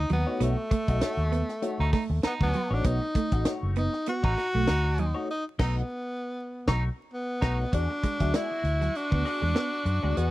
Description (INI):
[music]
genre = funk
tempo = 98 BPM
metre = 4/4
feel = swing 56% on 16ths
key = B mixolydian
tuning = A4 = 440 Hz
[part]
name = breathy tenor saxophone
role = melody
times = 0.0-10.3 s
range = A3 to F#4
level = -30 LUFS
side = equal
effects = none
[part]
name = raspy baritone saxophone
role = second line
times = 0.0-10.3 s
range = D#4 to F#4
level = -36 LUFS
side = right 4 dB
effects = none
[part]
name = vintage muted fingered electric bass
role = bass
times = 0.0-10.3 s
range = F#1 to F#2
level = -27 LUFS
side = equal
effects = none
[part]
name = electric guitar at the edge of break-up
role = riff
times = 0.1-10.1 s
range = F#3 to B3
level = -33 LUFS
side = right 5 dB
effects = tremolo
[part]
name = tight funk drum kit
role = drums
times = 0.1-10.3 s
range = crash cymbal, hi-hat, kick drum, snare drum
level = -28 LUFS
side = equal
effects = none
[part]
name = clean electric guitar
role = accompaniment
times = 0.3-10.3 s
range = A3 to E5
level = -34 LUFS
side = left 4 dB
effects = wah
[sound]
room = small room ambience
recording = dry, close 1970s-style studio recording, vinyl crackle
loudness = -25 LUFS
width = side -16 dB against mid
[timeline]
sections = 0.0-7.7 A section; 7.7-10.3 B section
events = band accent 5.3-7.7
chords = 0.0 B9; 7.7 E9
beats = | 0.41 1.02 1.63 2.24 | 2.85 3.46 4.07 4.68 | 5.29 5.90 6.51 7.12 | 7.73 8.34 8.95 9.56 | 10.17